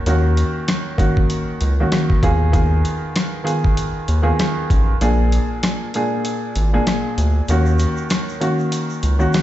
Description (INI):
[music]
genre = hip hop, boom-bap hip-hop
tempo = 97 BPM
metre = 4/4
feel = swing 58% on 16ths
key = Eb minor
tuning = A4 = 440 Hz
[part]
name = warm upright piano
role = accompaniment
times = 0.1-9.4 s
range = Bb2 to Ab4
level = -20 LUFS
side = equal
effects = cassette tape, high-pass filter, low-pass filter
[part]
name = round analog bass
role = bass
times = 0.1-9.3 s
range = Ab1 to Eb2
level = -16 LUFS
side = equal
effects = none
[part]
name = dusty soul sampler-style drum kit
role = drums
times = 0.1-9.4 s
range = hi-hat, kick drum, rim click, snare drum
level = -19 LUFS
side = equal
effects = none
[part]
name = tube shaker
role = percussion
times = 7.5-9.4 s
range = none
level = -40 LUFS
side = right 9 dB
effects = none
[sound]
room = little or no reverb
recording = played on a big sound system in a bare room, large studio reverb, nothing above 7.9 kHz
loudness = -16 LUFS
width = side -13 dB against mid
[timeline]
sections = 0.0-7.5 A section; 7.5-9.4 A section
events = kick muted 5.0-7.5, 7.5-9.4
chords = 0.0 Ebm7; 2.2 Fm7b5/Eb; 5.0 Bb7; 7.5 Ebm7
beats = | 0.06 0.68 1.29 1.91 | 2.53 3.15 3.77 4.39 | 5.01 5.62 6.24 6.86 | 7.48 8.10 8.72 9.34